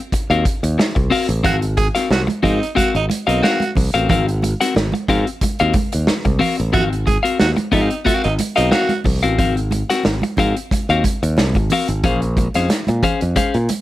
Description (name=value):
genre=funk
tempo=91 BPM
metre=4/4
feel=straight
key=Ab mixolydian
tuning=A4 = 439 Hz
part: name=clean electric guitar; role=accompaniment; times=0.1-13.7 s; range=C4 to Gb5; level=-19 LUFS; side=left 4 dB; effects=none
part: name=modern bright fingered electric bass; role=bass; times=0.1-13.7 s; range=Ab1 to Bb2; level=-19 LUFS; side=equal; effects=none
part: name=vintage drum kit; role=drums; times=0.1-13.8 s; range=hi-hat, kick drum, snare drum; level=-20 LUFS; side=equal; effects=none
part: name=breathy tenor saxophone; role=second line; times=1.5-9.0 s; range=Eb4 to Ab4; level=-21 LUFS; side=right 4 dB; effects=none
part: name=congas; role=percussion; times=1.5-13.8 s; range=none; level=-25 LUFS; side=right 4 dB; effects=none
room=light reverb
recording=vinyl crackle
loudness=-15 LUFS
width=side -15 dB against mid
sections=0.0-12.0 A section; 12.0-13.8 B section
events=none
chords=0.0 Ab13; 12.0 Bbm9